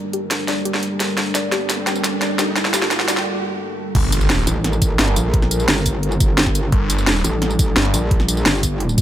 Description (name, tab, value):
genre	dark technical drum and bass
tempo	173 BPM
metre	4/4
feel	straight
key	G minor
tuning	A4 = 440 Hz
part	dark analog pad	sustained chords	0.0-9.0 s	G3 to D5	-25 LUFS	equal	chorus, sidechain pumping
part	riser and impact	sound effects	0.3-5.3 s	none	-27 LUFS	right 1 dB	none
part	warbly dusty pluck	arpeggios	0.1-3.2 s	G4 to D5	-27 LUFS	left 3 dB	chorus, sidechain pumping, tape echo
part	drum and bass drum kit	drums	0.1-9.0 s	crash cymbal, hi-hat, snare drum, tambourine	-20 LUFS	equal	overdrive, high-pass filter on hats, high-pass filter on snare, high-pass filter on perc, high-pass filter on cymbals, high-pass filter on room
part	snarling distorted saw bass	bass	4.0-7.9 s	G1	-19 LUFS	equal	distortion, overdrive, sidechain pumping
part	electronic kick drum	drums	4.0-9.0 s	none	-18 LUFS	equal	overdrive
part	metallic wobble bass	bass	4.5-9.0 s	F1 to Bb1	-20 LUFS	equal	distortion, chorus
room	light reverb, digital ambience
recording	none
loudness	-16 LUFS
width	side -11 dB against mid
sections	0.0-4.0 A section; 4.0-9.0 B section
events	build-up 0.0-4.0; drum fill 0.0-3.3; filter sweep on synth arpeggio sound 0.0-4.0; riser 0.3-3.3; break 3.3-4.0; drop 4.0-9.0; impact 4.0-5.3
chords	0.0 Gm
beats	0.14 0.48 0.83 | 1.18 1.52 1.87 2.22 | 2.56 2.91 3.26 3.60 | 3.95 4.30 4.64 4.99 | 5.34 5.68 6.03 6.38 | 6.72 7.07 7.42 7.76 | 8.11 8.46 8.80